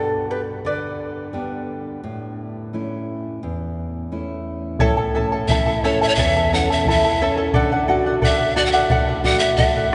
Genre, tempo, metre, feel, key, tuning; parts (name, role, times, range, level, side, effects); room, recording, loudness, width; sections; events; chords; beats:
andean folk, Andean ensemble; 87 BPM; 2/4; straight; A4 = 442 Hz
charango; accompaniment; 0.0-1.7, 4.8-9.9 s; E4 to A5; -24 LUFS; equal
nylon-string guitar; accompaniment; 0.0-9.9 s; E2 to A4; -27 LUFS; equal
bombo; percussion; 4.8-9.7 s; -26 LUFS; equal
breathy pan flute; melody; 5.5-9.9 s; C#5 to F#5; -22 LUFS; equal
wet cathedral reverb, RT60 7.1 s; recorded in a church or concert hall, nothing above 10.4 kHz; -20 LUFS; mono
0.0-4.8 A section; 4.8-9.9 B section
charango solo 0.0-4.8
0.0 G; 2.0 A; 7.5 D
| 0.64 1.34 | 2.04 2.73 | 3.42 4.12 | 4.80 5.49 | 6.18 6.86 | 7.54 8.22 | 8.90 9.58